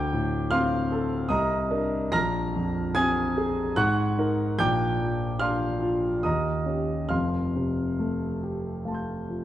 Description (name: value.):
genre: classical, impressionist solo piano.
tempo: 67-78 BPM.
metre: 3/4.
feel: rubato.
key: F major.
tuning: A4 = 442 Hz.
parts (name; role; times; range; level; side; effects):
warm grand piano; solo; 0.0-9.4 s; F1 to Bb6; -24 LUFS; equal; none.
room: moderate scoring stage reverb, RT60 2.0 s.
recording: dark, warm production.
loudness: -24 LUFS.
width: side -12 dB against mid.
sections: 0.0-9.4 A section.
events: none.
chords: 0.0 Dm7; 1.3 Cm9; 2.1 Bb9sus4; 3.8 Ab9sus4; 4.6 Bb69; 6.2 Eb7; 7.1 Fadd9.